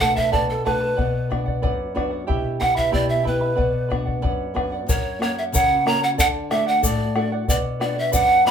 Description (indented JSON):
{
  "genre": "andean folk, Andean ensemble",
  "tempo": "92 BPM",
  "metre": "2/4",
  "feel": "straight",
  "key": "B minor",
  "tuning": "A4 = 440 Hz",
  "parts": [
    { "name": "breathy pan flute", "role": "melody", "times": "0.0-8.5 s", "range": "A4 to B5", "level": "-20 LUFS", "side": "right 2 dB", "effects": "none" },
    { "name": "charango", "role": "accompaniment", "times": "0.0-8.5 s", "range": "E4 to B5", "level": "-26 LUFS", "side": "right 5 dB", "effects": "none" },
    { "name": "nylon-string guitar", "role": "accompaniment", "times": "0.0-8.5 s", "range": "F#2 to G4", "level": "-26 LUFS", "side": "left 2 dB", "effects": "none" },
    { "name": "bombo", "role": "percussion", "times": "0.0-8.5 s", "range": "none", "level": "-25 LUFS", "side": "left 3 dB", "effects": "none" },
    { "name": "tube shaker", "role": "percussion", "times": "4.9-8.3 s", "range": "none", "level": "-27 LUFS", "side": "left 5 dB", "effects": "none" }
  ],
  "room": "wet studio reverb, RT60 0.5 s",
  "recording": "band playing live in one room",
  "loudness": "-19 LUFS",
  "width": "side -8 dB against mid",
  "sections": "0.0-4.9 A section; 4.9-8.5 B section",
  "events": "none",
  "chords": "0.0 D/B; 1.0 Bm; 2.3 Em/B; 3.6 Bm; 4.9 F#; 6.2 D; 7.5 Bm"
}